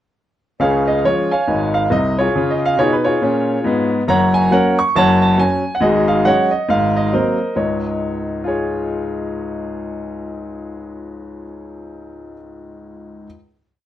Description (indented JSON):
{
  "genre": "jazz, stride piano",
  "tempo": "138 BPM",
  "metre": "4/4",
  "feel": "swing 60% on 8ths",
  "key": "Db major",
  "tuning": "A4 = 440 Hz",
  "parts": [
    { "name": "bright baby grand piano", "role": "solo", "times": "0.6-13.3 s", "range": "Gb1 to Db6", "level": "-16 LUFS", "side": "equal", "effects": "slapback echo" }
  ],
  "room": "light reverb",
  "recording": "dry, close 1970s-style studio recording",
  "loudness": "-14 LUFS",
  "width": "side -12 dB against mid",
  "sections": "0.6-7.6 A section; 7.6-11.0 final chord",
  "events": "none",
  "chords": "0.6 Db; 2.3 Db7; 4.1 Gb; 5.0 Gb5; 5.8 Ab7sus4; 6.7 Ab9; 7.6 Db"
}